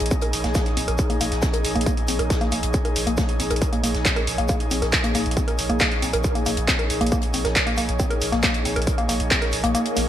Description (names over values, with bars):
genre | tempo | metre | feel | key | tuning
driving peak-time techno | 137 BPM | 4/4 | straight | Bb minor | A4 = 442 Hz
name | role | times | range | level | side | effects
saturated sub bass | bass | 0.0-10.1 s | Bb1 | -28 LUFS | equal | overdrive, sidechain pumping, low-pass filter
compact cocktail drum kit | drums | 0.0-10.1 s | hi-hat, shaker, snare drum | -35 LUFS | left 1 dB | none
punchy analog drum machine | drums | 0.0-10.1 s | handclaps, hi-hat | -25 LUFS | right 1 dB | sidechain pumping on hats, gated reverb
airy breathy pad | texture | 0.0-10.1 s | Eb4 to Db5 | -28 LUFS | equal | chorus, sidechain pumping
woody wave-folded pluck | riff | 0.1-10.0 s | Bb3 to Bb4 | -26 LUFS | equal | chorus, tube saturation, sidechain pumping, digital delay
electronic kick drum | drums | 0.1-9.4 s | none | -24 LUFS | equal | distortion
swell | sound effects | 9.8-10.1 s | none | -27 LUFS | left 8 dB | none
room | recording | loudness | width
light reverb, small room ambience | bright 1980s-style digital production | -19 LUFS | side -11 dB against mid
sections
0.0-10.1 A section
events
filter sweep on synth arpeggio sound 0.0-10.1; kick drops out 9.7-10.1; swell 9.8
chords
0.0 Bbm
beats
| 0.11 0.55 0.99 1.43 | 1.86 2.30 2.74 3.18 | 3.62 4.05 4.49 4.93 | 5.37 5.81 6.24 6.68 | 7.12 7.56 8.00 8.43 | 8.87 9.31 9.75